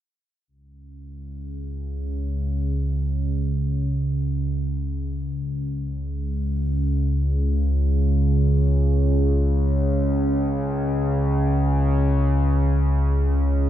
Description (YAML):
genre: ambient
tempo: free time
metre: none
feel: none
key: unclear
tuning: A4 = 440 Hz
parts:
  - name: analog drone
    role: solo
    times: 1.0-13.7 s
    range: C#2 to C#3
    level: -20 LUFS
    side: equal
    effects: chorus
room: wet cathedral reverb, RT60 6.3 s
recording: none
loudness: -20 LUFS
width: side -11 dB against mid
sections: 0.5-13.7 A section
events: none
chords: none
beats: free time